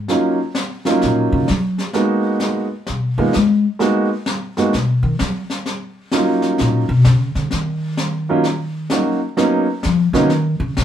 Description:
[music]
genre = jazz piano trio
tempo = 129 BPM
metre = 4/4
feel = swing 66% on 8ths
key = Eb minor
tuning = A4 = 440 Hz
[part]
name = upright bass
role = bass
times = 0.0-10.8 s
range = Bb2 to Ab3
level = -17 LUFS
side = left 2 dB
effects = none
[part]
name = clear concert grand piano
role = melody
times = 0.1-10.3 s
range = Gb3 to Gb4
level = -16 LUFS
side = right 2 dB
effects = none
[part]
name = brushed snare drum and snare drum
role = drums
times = 0.1-10.8 s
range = none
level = -25 LUFS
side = left 1 dB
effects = none
[sound]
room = wet studio ambience, RT60 0.5 s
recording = band playing live in one room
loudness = -15 LUFS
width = side -10 dB against mid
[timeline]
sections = 0.0-10.8 A section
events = upright bass solo 0.0-10.8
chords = 0.0 Ebm7; 1.9 Abm7; 5.7 Ebm7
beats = | 0.09 0.55 1.02 1.48 | 1.94 2.41 2.87 3.33 | 3.80 4.26 4.73 5.19 | 5.65 6.12 6.58 7.05 | 7.51 7.97 8.44 8.90 | 9.37 9.83 10.30 10.76

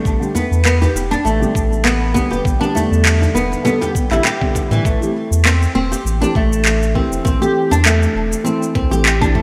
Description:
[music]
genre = organic downtempo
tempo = 100 BPM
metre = 4/4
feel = swing 55% on 16ths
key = A minor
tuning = A4 = 440 Hz
[part]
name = felt-muted upright piano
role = accompaniment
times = 0.0-9.4 s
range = D3 to A4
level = -25 LUFS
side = equal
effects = analog chorus, sidechain pumping, digital delay
[part]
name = flamenco guitar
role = arpeggios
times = 0.0-9.4 s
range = E3 to G4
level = -21 LUFS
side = equal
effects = analog chorus, digital delay
[part]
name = warm sub bass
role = bass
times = 0.1-9.4 s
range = E1 to A2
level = -20 LUFS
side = equal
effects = sidechain pumping
[part]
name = electronic kick drum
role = drums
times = 0.1-9.4 s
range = none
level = -22 LUFS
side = equal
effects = none
[part]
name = electronic shaker and handclaps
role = drums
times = 0.1-9.3 s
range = none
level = -22 LUFS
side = equal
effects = gated reverb
[part]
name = djembe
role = percussion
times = 0.1-4.7 s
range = none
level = -28 LUFS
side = equal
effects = none
[sound]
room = moderate plate reverb, RT60 2.6 s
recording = bright 1980s-style digital production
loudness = -16 LUFS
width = mono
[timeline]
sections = 0.0-4.8 A section; 4.8-9.4 B section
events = none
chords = 0.0 G; 4.8 Am7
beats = | 0.05 0.65 1.25 1.85 | 2.45 3.05 3.65 4.25 | 4.85 5.45 6.05 6.65 | 7.25 7.85 8.45 9.05

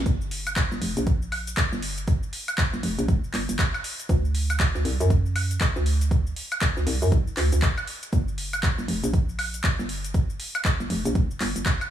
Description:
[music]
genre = deep house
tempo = 119 BPM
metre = 4/4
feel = swing 61% on 16ths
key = G minor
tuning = A4 = 436 Hz
[part]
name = hollow knocking FM bass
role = bass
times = 0.0-11.6 s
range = F1 to F#2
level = -25 LUFS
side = right 1 dB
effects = sidechain pumping
[part]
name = deep house drum kit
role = drums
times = 0.1-11.9 s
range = handclaps, hi-hat, shaker, woodblock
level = -28 LUFS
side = equal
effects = overdrive
[part]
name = electronic kick drum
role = drums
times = 0.1-11.8 s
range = none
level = -24 LUFS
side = right 1 dB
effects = overdrive
[sound]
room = little or no reverb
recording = small room ambience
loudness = -22 LUFS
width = side -11 dB against mid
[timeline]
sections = 0.0-11.9 A section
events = none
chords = none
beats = | 0.06 0.56 1.07 1.57 | 2.08 2.58 3.09 3.59 | 4.09 4.60 5.10 5.61 | 6.11 6.62 7.12 7.62 | 8.13 8.63 9.14 9.64 | 10.14 10.65 11.15 11.66

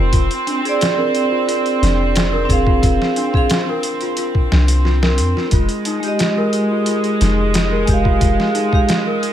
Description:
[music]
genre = trip hop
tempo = 89 BPM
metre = 4/4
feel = straight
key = unclear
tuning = A4 = 440 Hz
[part]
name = warm studio string section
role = sustained chords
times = 0.0-9.3 s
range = Ab3 to C4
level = -22 LUFS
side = right 1 dB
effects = none
[part]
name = celesta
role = arpeggios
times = 0.0-9.3 s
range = D4 to Bb4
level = -23 LUFS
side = left 3 dB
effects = ping-pong delay
[part]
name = soft 808-style bass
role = bass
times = 0.0-8.4 s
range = F1 to F2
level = -17 LUFS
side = equal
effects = tube saturation
[part]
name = trip hop sampler-style drum kit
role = drums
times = 0.1-9.3 s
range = hi-hat, kick drum, snare drum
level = -19 LUFS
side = equal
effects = none
[part]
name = vibraphone with medium mallets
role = accompaniment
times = 0.6-8.9 s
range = Ab3 to F5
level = -20 LUFS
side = right 2 dB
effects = harmonic tremolo, vintage 12-bit sampler grit, tape echo
[sound]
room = light reverb, small room ambience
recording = none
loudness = -14 LUFS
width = side -10 dB against mid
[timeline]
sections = 0.0-9.3 A section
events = none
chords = 0.1 Bb9/F; 5.5 Fm9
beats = | 0.13 0.81 1.48 2.16 | 2.83 3.50 4.18 4.85 | 5.53 6.20 6.88 7.55 | 8.22 8.90

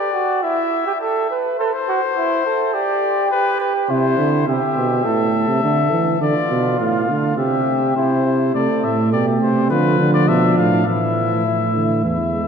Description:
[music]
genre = classical, imitative canzona for brass ensemble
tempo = 103 BPM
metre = 4/4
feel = straight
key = C major, A minor from 8.5 s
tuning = A4 = 444 Hz
[part]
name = warm trumpet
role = melody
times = 0.0-12.5 s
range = B4 to F5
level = -22 LUFS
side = left 7 dB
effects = none
[part]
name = mellow flugelhorn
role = second line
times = 0.0-12.5 s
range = D4 to B4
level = -21 LUFS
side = right 3 dB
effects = none
[part]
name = mellow euphonium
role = accompaniment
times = 3.9-12.5 s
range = A2 to A3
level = -19 LUFS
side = right 2 dB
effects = none
[part]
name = mellow bass trombone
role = bass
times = 8.6-12.5 s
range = E2 to D3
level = -19 LUFS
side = right 1 dB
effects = none
[sound]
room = wet church reverb, RT60 3.4 s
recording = dark, warm production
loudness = -16 LUFS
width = side -6 dB against mid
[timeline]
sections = 0.0-8.5 A section; 8.5-12.5 B section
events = none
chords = 0.4 E5; 1.6 Am; 2.7 G; 3.9 C; 5.1 Am; 6.2 Dm; 7.4 C; 8.5 Am; 9.7 Bdim/D; 10.9 Esus4/A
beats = 0.42 1.00 | 1.58 2.16 2.74 3.32 | 3.90 4.48 5.06 5.64 | 6.21 6.80 7.38 7.96 | 8.55 9.13 9.71 10.29 | 10.87 11.46 12.04

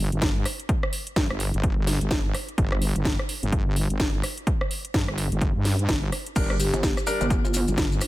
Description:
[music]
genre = bass house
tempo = 127 BPM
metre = 4/4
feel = swing 60% on 16ths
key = G minor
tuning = A4 = 440 Hz
[part]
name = wobble bass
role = bass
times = 0.0-8.0 s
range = G1 to G2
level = -25 LUFS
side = equal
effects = chorus, sidechain pumping
[part]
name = house drum kit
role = drums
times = 0.1-8.1 s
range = crash cymbal, hi-hat, rim click, snare drum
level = -29 LUFS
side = equal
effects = overdrive
[part]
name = electronic kick drum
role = drums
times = 0.2-7.9 s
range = none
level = -26 LUFS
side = equal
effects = overdrive
[part]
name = clear concert grand piano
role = stabs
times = 6.4-7.2 s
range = G3 to Bb4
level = -29 LUFS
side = left 1 dB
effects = sidechain pumping, ping-pong delay
[part]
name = maracas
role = percussion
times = 6.4-8.1 s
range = none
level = -35 LUFS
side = left 5 dB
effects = none
[part]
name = marimba with soft mallets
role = melody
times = 6.6-8.1 s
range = D4 to G4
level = -31 LUFS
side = left 1 dB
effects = ping-pong delay
[part]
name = pulsing pluck wobble bass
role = bass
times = 6.7-7.7 s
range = G1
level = -26 LUFS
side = equal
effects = chorus, tube saturation, sidechain pumping
[sound]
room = little or no reverb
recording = none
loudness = -22 LUFS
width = side -17 dB against mid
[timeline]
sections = 0.0-8.1 A section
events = none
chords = none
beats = 0.22 | 0.69 1.16 1.64 2.11 | 2.58 3.05 3.52 4.00 | 4.47 4.94 5.42 5.89 | 6.36 6.83 7.30 7.78

